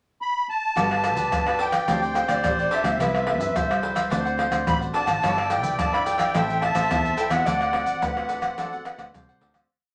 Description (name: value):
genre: samba and choro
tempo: 108 BPM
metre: 4/4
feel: straight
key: unclear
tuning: A4 = 438 Hz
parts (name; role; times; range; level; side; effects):
- musette accordion; melody; 0.2-9.1 s; D5 to B5; -27 LUFS; equal; none
- warm clarinet; second line; 0.8-9.7 s; A4 to E5; -31 LUFS; equal; none
- cavaquinho; accompaniment; 0.8-9.7 s; D4 to F#5; -34 LUFS; equal; none
- nylon-string guitar; accompaniment; 0.8-9.7 s; G2 to B4; -39 LUFS; equal; none
- fingered electric bass; bass; 0.8-9.7 s; G1 to G2; -33 LUFS; equal; none
- maracas, surdo, pandeiro and tamborim; percussion; 0.8-9.7 s; none; -28 LUFS; equal; none
room: wet studio reverb, RT60 0.5 s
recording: none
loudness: -23 LUFS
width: mono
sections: 0.0-0.8 pickup bar; 0.8-9.7 groove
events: fade-out 7.5-9.7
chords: 0.0 N.C.; 0.8 Gmaj7; 1.9 D7sus4; 3.0 Cmaj7; 4.1 D7; 5.2 G6; 6.3 Am; 7.5 D7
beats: 0.21 | 0.77 1.33 1.88 2.44 | 3.00 3.56 4.12 4.67 | 5.23 5.79 6.35 6.91 | 7.47 8.03 8.58 9.14